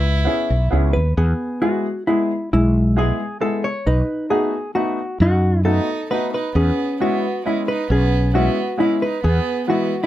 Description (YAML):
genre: musette waltz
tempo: 134 BPM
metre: 3/4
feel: straight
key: E major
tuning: A4 = 440 Hz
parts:
  - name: hollow-body jazz guitar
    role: melody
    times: 0.0-10.1 s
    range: G#3 to C#5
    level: -21 LUFS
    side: equal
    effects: none
  - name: rich violin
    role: second line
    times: 0.0-0.7, 5.7-10.1 s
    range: G#3 to E4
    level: -26 LUFS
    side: right 6 dB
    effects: none
  - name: mellow fretless electric bass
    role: bass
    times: 0.0-9.4 s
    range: B1 to F#2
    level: -17 LUFS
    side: equal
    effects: none
  - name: clear upright piano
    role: accompaniment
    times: 0.2-9.9 s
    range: E3 to G#4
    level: -22 LUFS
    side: left 1 dB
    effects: none
room: light reverb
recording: close, detailed microphones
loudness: -17 LUFS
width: side -13 dB against mid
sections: 0.0-1.2 A section; 1.2-10.1 B section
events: none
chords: 0.0 C#m7; 1.2 E; 3.9 B7; 6.5 E6; 9.2 E